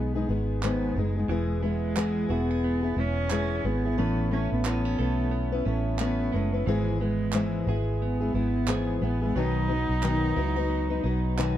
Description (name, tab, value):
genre	acoustic pop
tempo	89 BPM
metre	4/4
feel	swing 60% on 16ths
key	E major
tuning	A4 = 443 Hz
part	warm cello	melody	0.0-11.4 s	G#3 to D#4	-30 LUFS	right 1 dB	tape echo
part	fingerpicked steel-string acoustic guitar	accompaniment	0.0-11.6 s	G#2 to B4	-30 LUFS	left 4 dB	none
part	vintage muted fingered electric bass	bass	0.0-11.6 s	E1 to C#2	-28 LUFS	right 1 dB	none
part	group handclap	percussion	0.6-11.6 s	none	-35 LUFS	right 6 dB	none
part	direct-recorded clean electric guitar	arpeggios	1.3-11.6 s	E3 to A4	-36 LUFS	right 6 dB	none
room	light reverb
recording	dark, warm production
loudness	-24 LUFS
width	side -12 dB against mid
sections	0.0-11.6 A section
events	none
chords	0.0 G#m; 1.3 E; 4.0 Aadd9; 6.7 E/G#; 9.4 B